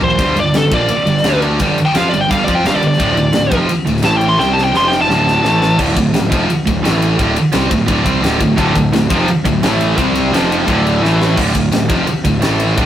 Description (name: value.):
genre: heavy metal.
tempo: 172 BPM.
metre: 4/4.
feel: straight.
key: D minor.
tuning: A4 = 441 Hz.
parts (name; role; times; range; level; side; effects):
high-gain lead guitar; melody; 0.0-5.8 s; A4 to C6; -15 LUFS; left 1 dB; distortion.
heavy high-gain guitar; riff; 0.0-12.9 s; D2 to F4; -20 LUFS; left 4 dB; distortion.
high-gain distorted guitar; riff; 0.0-12.9 s; D2 to F4; -16 LUFS; right 3 dB; distortion.
fuzz picked electric bass; bass; 0.0-12.9 s; D1 to F2; -19 LUFS; left 1 dB; overdrive.
tight metal drum kit; drums; 0.0-12.9 s; crash cymbal, kick drum, ride cymbal, snare drum, splash cymbal, toms; -19 LUFS; equal; none.
tight distorted guitar; riff; 8.6-11.4 s; D2 to C4; -18 LUFS; left 1 dB; distortion.
room: light reverb.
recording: rough rehearsal-room recording, warm saturation.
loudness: -11 LUFS.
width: side -11 dB against mid.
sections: 0.0-5.8 A section; 5.8-11.4 B section; 11.4-12.9 B section.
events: drum fill 0.0, 4.4-5.8, 11.0-11.4; lead electric guitar solo 0.0-5.8.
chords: 0.2 G5; 1.2 D5; 1.6 G5; 3.0 Dm; 4.0 A5; 4.4 C5; 4.7 F5; 5.1 D5; 5.4 A5; 5.8 Dm; 6.8 A5; 7.2 Dm; 9.6 A5; 10.0 C5; 10.3 F5; 10.7 D5; 11.0 A5; 11.4 Dm; 12.4 A5.